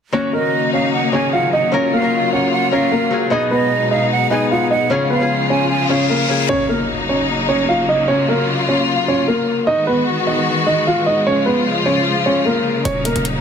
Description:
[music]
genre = hip hop, trap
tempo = 151 BPM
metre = 4/4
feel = half-time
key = Eb minor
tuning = A4 = 439 Hz
[part]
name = dark concert grand piano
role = melody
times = 0.1-13.2 s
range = Bb3 to F5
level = -18 LUFS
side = right 1 dB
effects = low-pass filter, ping-pong delay
[part]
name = Celtic harp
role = accompaniment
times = 0.1-7.4 s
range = B2 to Bb4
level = -21 LUFS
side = left 6 dB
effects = low-pass filter
[part]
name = warm symphonic string section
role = sustained chords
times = 0.1-13.4 s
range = B2 to F#4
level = -19 LUFS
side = left 2 dB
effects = none
[part]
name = hollow concert flute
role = second line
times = 0.3-6.5 s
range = D#5 to Ab5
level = -21 LUFS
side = right 6 dB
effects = ping-pong delay
[part]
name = reverse cymbal and impact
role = sound effects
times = 5.8-8.1 s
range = none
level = -25 LUFS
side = left 3 dB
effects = none
[part]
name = distorted 808-style bass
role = bass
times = 12.9-13.4 s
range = Eb1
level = -22 LUFS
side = right 1 dB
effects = distortion
[part]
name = electronic hi-hat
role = drums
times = 12.9-13.3 s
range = none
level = -26 LUFS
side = left 1 dB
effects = none
[sound]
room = light reverb, studio reverb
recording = dense, heavily limited modern master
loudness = -14 LUFS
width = side -7 dB against mid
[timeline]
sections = 0.1-6.5 A section; 6.5-13.4 B section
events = reverse cymbal 5.8-6.5; impact 6.5-8.1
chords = 0.1 Ebm7; 1.7 Gbmaj7; 3.3 B6; 4.9 Db; 6.5 Ebm7; 8.1 Gbmaj7; 9.7 B6; 11.3 Db; 12.9 Ebm7

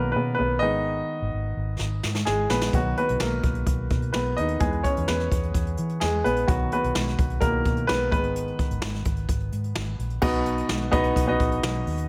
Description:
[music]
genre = piano-driven pop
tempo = 128 BPM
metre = 4/4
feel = straight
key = B major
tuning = A4 = 440 Hz
[part]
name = warm grand piano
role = accompaniment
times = 0.0-12.1 s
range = B2 to D#5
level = -28 LUFS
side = equal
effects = none
[part]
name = vintage muted fingered electric bass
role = bass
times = 0.0-12.1 s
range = G#1 to E3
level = -31 LUFS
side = equal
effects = none
[part]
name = jazz brush drum kit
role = drums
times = 1.8-12.1 s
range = crash cymbal, hi-hat, kick drum, snare drum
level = -29 LUFS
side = equal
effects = none
[sound]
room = light reverb, small room ambience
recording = none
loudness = -25 LUFS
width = mono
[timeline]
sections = 0.0-10.2 A section; 10.2-12.1 B section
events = grand piano solo 0.0-10.2; drum fill 1.8-2.7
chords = 0.0 B; 0.6 G#m; 2.7 B; 4.6 E; 6.5 B; 8.1 G#m; 10.2 B

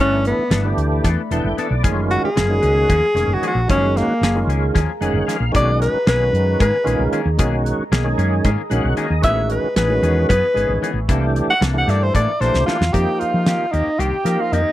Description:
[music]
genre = electric jazz fusion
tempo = 227 BPM (eighths)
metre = 7/8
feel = straight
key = unclear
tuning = A4 = 440 Hz
[part]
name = clear alto saxophone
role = melody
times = 0.0-14.7 s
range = A#3 to F#5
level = -19 LUFS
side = left 1 dB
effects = slapback echo
[part]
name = tonewheel organ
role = accompaniment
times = 0.0-14.6 s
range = D#3 to G5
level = -23 LUFS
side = right 2 dB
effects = overdrive, chorus vibrato, slow rotary speaker
[part]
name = deep dark ambient pad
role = sustained chords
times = 0.0-14.7 s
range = A3 to E6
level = -31 LUFS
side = right 3 dB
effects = chorus, built-in reverb
[part]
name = semi-hollow electric guitar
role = stabs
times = 0.0-14.7 s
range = D#3 to A4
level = -26 LUFS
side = left 7 dB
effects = analog chorus
[part]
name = woody fretless electric bass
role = bass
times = 0.0-14.6 s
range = E1 to F3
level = -20 LUFS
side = equal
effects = none
[part]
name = damped 70s drum kit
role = drums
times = 0.2-14.7 s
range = hi-hat, kick drum, snare drum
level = -20 LUFS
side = equal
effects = none
[part]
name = bright concert flute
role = second line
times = 12.7-14.7 s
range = Eb5 to G5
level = -28 LUFS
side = right 5 dB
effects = slapback echo
[sound]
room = small room ambience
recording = dry, close 1970s-style studio recording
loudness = -15 LUFS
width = side -14 dB against mid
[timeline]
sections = 0.0-12.9 A section; 12.9-14.7 B section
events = alto saxophone solo 0.0-12.9; tonewheel organ fill 1.0-1.8, 4.7-5.5, 8.4-9.2; drum fill 12.5-12.9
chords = 0.0 G69; 1.8 F#maj9; 5.5 Bmaj13; 9.2 Amaj9; 11.1 C13; 12.9 F9sus4

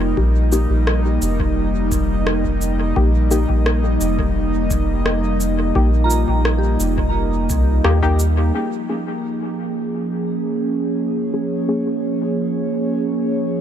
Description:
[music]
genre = ambient dub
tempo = 86 BPM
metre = 4/4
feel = straight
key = Bb dorian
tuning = A4 = 440 Hz
[part]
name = airy breathy pad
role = sustained chords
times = 0.0-13.6 s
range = F3 to Eb5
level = -21 LUFS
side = right 1 dB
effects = chorus
[part]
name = soft synth bell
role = arpeggios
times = 0.0-8.7 s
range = F4 to Bb5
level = -29 LUFS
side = right 3 dB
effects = chorus, tape echo
[part]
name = soft dub sub bass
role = bass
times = 0.0-8.5 s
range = F1 to Eb2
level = -18 LUFS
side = equal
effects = tube saturation
[part]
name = filtered dub chord stab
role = stabs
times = 0.2-11.8 s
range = Bb3 to Ab4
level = -26 LUFS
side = left 4 dB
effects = chorus, dub echo
[part]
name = electronic kick drum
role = drums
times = 0.2-8.2 s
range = none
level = -24 LUFS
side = equal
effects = none
[part]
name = electronic cabasa and rim click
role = drums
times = 0.5-8.3 s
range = none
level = -26 LUFS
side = equal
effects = overdrive, dub echo
[sound]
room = little or no reverb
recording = none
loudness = -16 LUFS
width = side -9 dB against mid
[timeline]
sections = 0.0-8.5 A section; 8.5-13.6 B section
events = filter sweep on synth stab 0.0-8.5, 8.5-13.6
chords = 0.0 Eb; 8.5 Bbm7

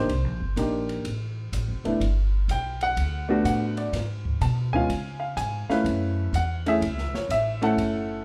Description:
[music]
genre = jazz piano trio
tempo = 125 BPM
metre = 4/4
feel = swing 66% on 8ths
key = F# minor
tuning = A4 = 440 Hz
[part]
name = warm baby grand piano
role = melody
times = 0.0-8.2 s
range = G#3 to A5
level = -28 LUFS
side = equal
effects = none
[part]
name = upright bass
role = bass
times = 0.0-8.2 s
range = Eb1 to C#3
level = -30 LUFS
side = equal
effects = none
[part]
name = open jazz drum kit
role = drums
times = 0.1-7.9 s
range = hi-hat, kick drum, ride cymbal, snare drum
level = -39 LUFS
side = equal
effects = none
[sound]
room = moderate large studio reverb, RT60 0.8 s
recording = band playing live in one room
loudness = -26 LUFS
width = mono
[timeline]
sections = 0.0-8.2 A section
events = none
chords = 0.1 Cm7; 1.1 F7; 2.0 Gmaj7; 3.9 G#m6; 4.9 C#; 5.9 F#m7

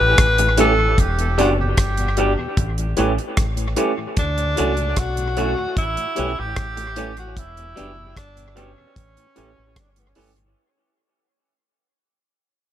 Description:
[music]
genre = lovers rock reggae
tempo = 75 BPM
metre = 4/4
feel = straight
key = unclear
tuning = A4 = 440 Hz
[part]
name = warm tenor saxophone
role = melody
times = 0.0-10.2 s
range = B3 to B4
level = -22 LUFS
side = left 1 dB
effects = tape echo
[part]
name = deep dub fingered electric bass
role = bass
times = 0.0-10.5 s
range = E1 to D2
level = -23 LUFS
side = equal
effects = none
[part]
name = damped 70s drum kit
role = drums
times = 0.2-10.5 s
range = hi-hat, kick drum, rim click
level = -22 LUFS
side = equal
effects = dub echo
[part]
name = mellow tonewheel organ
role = accompaniment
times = 0.4-10.5 s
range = D2 to D4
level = -31 LUFS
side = left 5 dB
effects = slow rotary speaker
[part]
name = electric guitar through a small old amp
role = stabs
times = 0.4-10.3 s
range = E3 to G4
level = -24 LUFS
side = right 4 dB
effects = dub echo
[part]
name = mellow tine electric piano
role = accompaniment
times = 0.6-10.3 s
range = E4 to D5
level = -29 LUFS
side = left 5 dB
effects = medium stereo tremolo, dub echo
[sound]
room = light reverb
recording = none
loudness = -17 LUFS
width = side -11 dB against mid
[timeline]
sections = 0.0-10.6 A section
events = fade-out 0.0-10.6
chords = 0.0 A7; 1.0 Em7; 2.6 A7; 4.2 Dmaj7; 5.8 A7; 7.4 Em7; 9.0 A7

